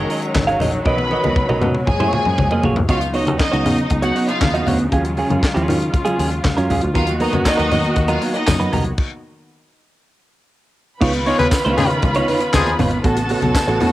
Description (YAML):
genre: disco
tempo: 118 BPM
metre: 4/4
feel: straight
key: unclear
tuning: A4 = 438 Hz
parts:
  - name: clear studio violin section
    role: second line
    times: 0.0-13.9 s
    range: D#4 to B5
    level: -23 LUFS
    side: equal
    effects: none
  - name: clean electric guitar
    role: accompaniment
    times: 0.0-13.9 s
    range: F#3 to E#5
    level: -20 LUFS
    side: right 2 dB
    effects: phaser
  - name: warm studio string section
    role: sustained chords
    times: 0.0-13.9 s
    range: C#3 to F#4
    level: -23 LUFS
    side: left 1 dB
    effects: none
  - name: picked electric bass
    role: bass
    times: 0.0-13.9 s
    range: F#1 to D#3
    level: -22 LUFS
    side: equal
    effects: none
  - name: tight funk drum kit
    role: drums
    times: 0.1-13.9 s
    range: crash cymbal, handclaps, hi-hat, kick drum, snare drum, toms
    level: -21 LUFS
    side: equal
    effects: cassette tape
  - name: congas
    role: percussion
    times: 0.3-13.9 s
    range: none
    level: -25 LUFS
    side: left 3 dB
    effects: none
  - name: tambourine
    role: percussion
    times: 7.5-13.7 s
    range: none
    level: -31 LUFS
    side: right 4 dB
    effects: none
  - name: clear horn section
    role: stabs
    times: 11.3-12.7 s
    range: E#3 to C#5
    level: -20 LUFS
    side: left 3 dB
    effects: none
room: light reverb, small room ambience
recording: home recording on cassette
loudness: -15 LUFS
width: side -15 dB against mid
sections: 0.0-2.9 A section; 2.9-11.0 B section; 11.0-13.9 C section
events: drum fill 0.9-2.9; stop 9.0-11.0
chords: 0.0 F#69; 0.9 Bmaj7; 1.9 F#maj9; 2.9 C#9sus4; 4.9 D#m11; 7.0 Bmaj7/D#; 9.0 N.C.; 11.0 C#9; 13.0 A69